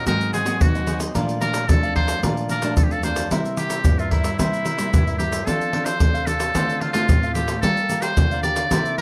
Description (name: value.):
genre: samba and choro.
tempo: 111 BPM.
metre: 4/4.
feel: straight.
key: unclear.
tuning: A4 = 440 Hz.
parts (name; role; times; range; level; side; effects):
trumpet with metal mute; melody; 0.0-9.0 s; E4 to D5; -27 LUFS; equal; none.
cavaquinho; accompaniment; 0.0-9.0 s; D4 to A5; -31 LUFS; equal; none.
nylon-string guitar; accompaniment; 0.0-9.0 s; F2 to A4; -28 LUFS; equal; none.
tube shaker, surdo and pandeiro; percussion; 0.1-9.0 s; none; -23 LUFS; equal; none.
room: light reverb.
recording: close, detailed microphones.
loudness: -21 LUFS.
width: mono.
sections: 0.0-9.0 A section.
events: none.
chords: 0.1 Ab9; 1.2 Bbmaj7; 3.3 C7; 5.5 F6; 6.6 Dm7; 7.6 Gm9.